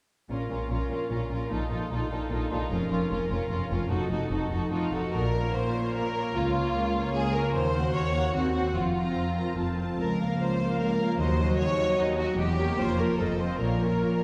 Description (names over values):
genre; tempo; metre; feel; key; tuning
classical; 150 BPM; 3/4; straight; Bb minor; A4 = 440 Hz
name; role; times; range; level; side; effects
warm symphonic violin section; melody; 0.3-14.2 s; A4 to Bb5; -40 LUFS; equal; none
clear symphonic violin section; second line; 0.3-14.2 s; Eb4 to Db5; -33 LUFS; equal; none
rich symphonic viola section; accompaniment; 0.3-14.2 s; Gb3 to G4; -35 LUFS; equal; none
concert harp; arpeggios; 0.3-14.2 s; F2 to Gb5; -36 LUFS; equal; none
rich symphonic cello section; bass; 0.3-14.2 s; Db2 to Bb2; -34 LUFS; equal; none
rich symphonic double bass section; bass; 0.3-14.0 s; E1 to Eb2; -35 LUFS; equal; none
room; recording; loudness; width
wet scoring stage reverb, RT60 1.8 s; heard from further back in the room; -28 LUFS; mono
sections
0.3-5.1 A section; 5.1-14.2 B section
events
none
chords
0.3 Bbm; 1.5 F7/Bb; 2.7 Bbm/F; 3.9 F7b9; 5.1 Bbm; 6.3 Bbm/Db; 7.5 Ebm7; 8.3 Cdim/Eb; 8.7 Fsus4; 9.6 F; 10.0 Bbm/Db; 11.2 Cdim/Eb; 12.4 Edim7; 12.8 Bbm/F; 13.2 F7; 13.6 Bbm